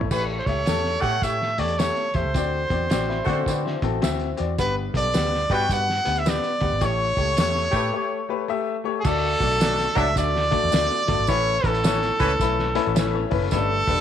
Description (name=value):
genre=uptempo 1960s-style soul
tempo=107 BPM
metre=4/4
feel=swing 64% on 8ths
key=unclear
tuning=A4 = 443 Hz
part: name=clear baby grand piano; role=accompaniment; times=0.0-14.0 s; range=G2 to F#5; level=-27 LUFS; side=left 10 dB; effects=none
part: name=vintage muted fingered electric bass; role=bass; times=0.0-14.0 s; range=E1 to D3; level=-27 LUFS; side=right 2 dB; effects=none
part: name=cloth-damped thuddy drum kit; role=drums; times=0.0-14.0 s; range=crash cymbal, hi-hat, kick drum, snare drum, toms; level=-27 LUFS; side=right 1 dB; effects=none
part: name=brilliant trumpet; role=melody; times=0.1-14.0 s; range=G#4 to G5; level=-24 LUFS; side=right 1 dB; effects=none
part: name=tambourine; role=percussion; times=0.1-13.7 s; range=none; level=-38 LUFS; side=right 16 dB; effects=none
part: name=clear horn section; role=second line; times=1.0-14.0 s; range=E3 to C#5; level=-28 LUFS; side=right 1 dB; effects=none
part: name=electric guitar through a small old amp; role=riff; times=3.1-4.5, 12.9-13.7 s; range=A3 to C#5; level=-32 LUFS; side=left 9 dB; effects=none
room=light reverb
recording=1960s-style stereo with parts hard left and right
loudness=-20 LUFS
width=side -9 dB against mid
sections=0.1-9.1 A section; 9.1-14.0 B section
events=break 7.9-9.1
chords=0.1 A7; 2.3 D7; 4.6 Gmaj7; 6.8 A7; 9.1 D; 11.3 Aadd9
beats=| 0.11 0.67 1.23 1.79 | 2.35 2.91 3.47 4.03 | 4.58 5.14 5.70 6.26 | 6.82 7.38 7.94 8.50 | 9.06 9.61 10.17 10.73 | 11.29 11.85 12.40 12.96 | 13.52